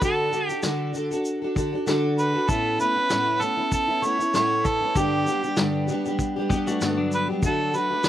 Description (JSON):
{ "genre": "acoustic pop", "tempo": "97 BPM", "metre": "4/4", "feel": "swing 55% on 16ths", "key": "D major", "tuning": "A4 = 440 Hz", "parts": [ { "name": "warm harmonica", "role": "melody", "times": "0.0-8.1 s", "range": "G4 to C#5", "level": "-23 LUFS", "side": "right 1 dB", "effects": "slapback echo" }, { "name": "fingerpicked plugged-in steel-string acoustic guitar", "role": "accompaniment", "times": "0.0-8.1 s", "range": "G2 to A4", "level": "-24 LUFS", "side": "left 1 dB", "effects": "double-tracked left and right" }, { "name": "vintage brush drum kit", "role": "drums", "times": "0.0-8.1 s", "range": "kick drum, shaker, snare drum", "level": "-27 LUFS", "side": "equal", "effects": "none" }, { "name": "clean electric guitar", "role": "second line", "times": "6.5-7.4 s", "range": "F#3 to G4", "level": "-29 LUFS", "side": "left 4 dB", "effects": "none" } ], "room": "little or no reverb", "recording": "recorded outdoors, with no room sound", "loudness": "-21 LUFS", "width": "side -12 dB against mid", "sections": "0.0-8.1 A section", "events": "none", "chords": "0.0 D; 2.5 Aadd9; 5.0 G; 7.4 D" }